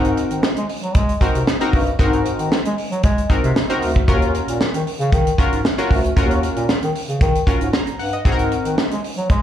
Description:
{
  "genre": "early-eighties boogie funk",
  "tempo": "115 BPM",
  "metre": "4/4",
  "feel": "straight",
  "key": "unclear",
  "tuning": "A4 = 440 Hz",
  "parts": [
    { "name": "funky polysynth comp", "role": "accompaniment", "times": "0.0-8.9 s", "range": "C4 to Bb5", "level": "-22 LUFS", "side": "left 1 dB", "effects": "chorus, slapback echo" },
    { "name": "mellow bass clarinet", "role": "bass", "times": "0.0-9.4 s", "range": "D2 to Ab3", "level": "-21 LUFS", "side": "equal", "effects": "none" },
    { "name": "tight funk drum kit", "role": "drums", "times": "0.0-9.4 s", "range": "hi-hat, kick drum, snare drum", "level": "-18 LUFS", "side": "equal", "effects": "none" }
  ],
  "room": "small room ambience",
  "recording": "live gig heard through the venue's PA, club reverb",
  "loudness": "-16 LUFS",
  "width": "side -10 dB against mid",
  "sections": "0.0-9.4 A section",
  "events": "none",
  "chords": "0.0 Ab7; 4.1 Ebm7; 8.3 Ab7",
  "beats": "0.43 0.95 1.47 | 1.99 2.52 3.04 3.56 | 4.08 4.60 5.12 5.65 | 6.17 6.69 7.21 7.73 | 8.25 8.78 9.30"
}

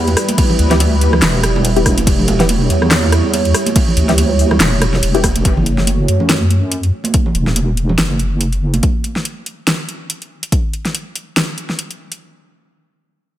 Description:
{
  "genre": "deep dubstep",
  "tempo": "142 BPM",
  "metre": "4/4",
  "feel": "swing 56% on 16ths, half-time",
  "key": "F# phrygian",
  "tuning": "A4 = 440 Hz",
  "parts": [
    { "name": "dark analog pad", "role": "sustained chords", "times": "0.0-7.1 s", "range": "G3 to C#5", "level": "-19 LUFS", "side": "right 3 dB", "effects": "chorus" },
    { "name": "deep soft wobble bass", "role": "bass", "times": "0.0-8.8 s", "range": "E1 to F#2", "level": "-15 LUFS", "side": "equal", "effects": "chorus" },
    { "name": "deep house drum kit", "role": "drums", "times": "0.1-12.2 s", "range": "crash cymbal, handclaps, hi-hat, rim click, snare drum", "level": "-17 LUFS", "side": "equal", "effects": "overdrive, small room ambience" },
    { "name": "congas", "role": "percussion", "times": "0.1-8.8 s", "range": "none", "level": "-21 LUFS", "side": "right 3 dB", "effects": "dub echo" },
    { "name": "electronic kick drum", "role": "drums", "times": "0.4-10.6 s", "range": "none", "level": "-15 LUFS", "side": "equal", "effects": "overdrive, small room ambience" },
    { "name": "filtered dub chord stab", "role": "stabs", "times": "0.7-5.2 s", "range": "B3 to G4", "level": "-21 LUFS", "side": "left 3 dB", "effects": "phaser, analog chorus, dub echo" }
  ],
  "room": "light reverb, digital ambience",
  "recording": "none",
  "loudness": "-12 LUFS",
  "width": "side -12 dB against mid",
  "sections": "0.0-5.5 A section; 5.5-12.2 B section; 12.2-13.4 C section",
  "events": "drop 0.0-5.5",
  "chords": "0.0 Em; 5.5 F#m; 12.2 N.C.",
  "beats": "| 0.38 0.80 1.23 1.65 | 2.07 2.49 2.92 3.34 | 3.76 4.18 4.61 5.03 | 5.45 5.87 6.29 6.72 | 7.14 7.56 7.99 8.41 | 8.83 9.25 9.68 10.10 | 10.52 10.94 11.37 11.79"
}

